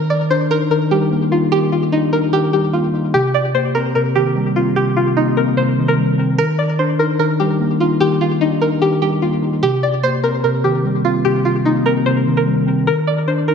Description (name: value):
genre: hip hop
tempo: 148 BPM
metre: 4/4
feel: half-time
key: unclear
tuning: A4 = 439 Hz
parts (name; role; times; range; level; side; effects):
- string-like resonator pluck; melody; 0.0-13.5 s; Eb4 to D5; -17 LUFS; equal; chorus, low-pass filter, ping-pong delay
- mellow tine electric piano; accompaniment; 0.0-13.5 s; C3 to Eb4; -17 LUFS; left 1 dB; phaser, low-pass filter
room: moderate plate reverb, RT60 2.8 s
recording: dreamy mix soaked in reverb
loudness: -14 LUFS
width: side -6 dB against mid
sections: 0.0-12.9 A section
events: none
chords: 0.0 Ebmaj7; 3.1 Cm7; 6.4 Ebmaj7; 9.6 Cm7; 12.9 Ebmaj7(no3)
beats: 0.30 0.71 1.11 | 1.52 1.93 2.33 2.74 | 3.14 3.55 3.95 4.36 | 4.76 5.17 5.57 5.98 | 6.38 6.79 7.20 7.60 | 8.01 8.41 8.82 9.22 | 9.63 10.03 10.44 10.84 | 11.25 11.65 12.06 12.47 | 12.87 13.28